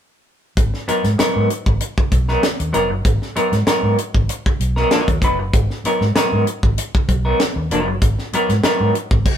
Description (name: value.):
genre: funk.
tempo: 97 BPM.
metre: 4/4.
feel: straight.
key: G# dorian.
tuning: A4 = 444 Hz.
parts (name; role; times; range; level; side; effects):
vintage muted fingered electric bass; bass; 0.6-9.2 s; E#1 to G#2; -20 LUFS; equal; none.
tight funk drum kit; drums; 0.6-9.4 s; crash cymbal, hi-hat, kick drum, snare drum; -19 LUFS; equal; none.
semi-hollow electric guitar; accompaniment; 0.9-9.2 s; F#3 to B4; -19 LUFS; equal; tremolo.
room: light reverb.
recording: band playing live in one room.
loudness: -15 LUFS.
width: side -9 dB against mid.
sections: 0.6-9.4 A section.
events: none.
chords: 0.6 G#m9.